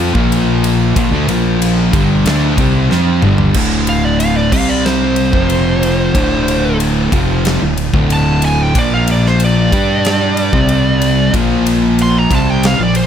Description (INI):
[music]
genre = stoner and doom metal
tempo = 92 BPM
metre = 4/4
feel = straight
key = D minor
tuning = A4 = 441 Hz
[part]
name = cranked stack guitar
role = riff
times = 0.0-13.1 s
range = D2 to G4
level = -19 LUFS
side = left 1 dB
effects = overdrive
[part]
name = thick fuzz guitar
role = riff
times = 0.0-13.1 s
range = D2 to G4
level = -17 LUFS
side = left 8 dB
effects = distortion
[part]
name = thick fuzz guitar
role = riff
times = 0.0-13.0 s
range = D2 to G4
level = -17 LUFS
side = right 8 dB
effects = distortion
[part]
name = growling fingered electric bass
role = bass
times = 0.0-13.1 s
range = D1 to G2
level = -18 LUFS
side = equal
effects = overdrive
[part]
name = big rock drum kit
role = drums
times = 0.1-13.1 s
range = crash cymbal, kick drum, ride cymbal, snare drum, toms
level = -18 LUFS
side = equal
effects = none
[part]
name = fuzz lead guitar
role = melody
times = 3.9-13.1 s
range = C5 to C6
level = -18 LUFS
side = right 2 dB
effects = distortion
[sound]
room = small room ambience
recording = none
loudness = -11 LUFS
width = side -9 dB against mid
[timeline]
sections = 0.0-3.6 A section; 3.6-13.1 B section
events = drum fill 2.9-3.6; lead electric guitar solo 3.6-13.1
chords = 0.2 Bb5; 1.0 Bbmaj7; 1.3 Bb5; 1.9 G5; 3.6 D5; 4.5 C5; 5.3 F5; 6.2 Dm; 8.7 Bb5; 9.7 G5; 10.5 C5; 11.3 Bb5